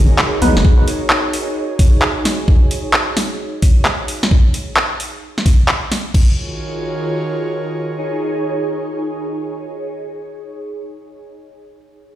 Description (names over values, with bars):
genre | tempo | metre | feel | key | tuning
UK garage, two-step garage | 131 BPM | 4/4 | swing 65% on 16ths | Eb minor | A4 = 439 Hz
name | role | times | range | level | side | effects
airy breathy pad | sustained chords | 0.0-9.6 s | Eb3 to Db5 | -24 LUFS | right 1 dB | chorus, sidechain pumping
deep soft wobble bass | bass | 0.0-0.6 s | F#1 to B1 | -15 LUFS | equal | chorus
ethereal airy pad | texture | 0.0-9.8 s | Eb4 to Db5 | -26 LUFS | right 1 dB | ensemble chorus, built-in reverb, phaser, sidechain pumping
garage drum kit | drums | 0.2-6.3 s | crash cymbal, handclaps, hi-hat, snare drum | -18 LUFS | equal | none
percussive organ stab | stabs | 0.4-0.5 s | B3 to B4 | -21 LUFS | left 1 dB | wide subtle chorus, tape echo
electronic kick drum | drums | 0.6-6.3 s | none | -11 LUFS | equal | none
room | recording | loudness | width
light reverb | played on a big sound system in a bare room, stone room reverb | -14 LUFS | side -13 dB against mid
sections
0.0-6.1 A section; 6.1-9.8 B section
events
fade-out on ambient pad 0.0-4.3; filter sweep on analog synth pad 0.0-4.3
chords
0.0 Bmaj7 (rootless); 6.1 Ebm11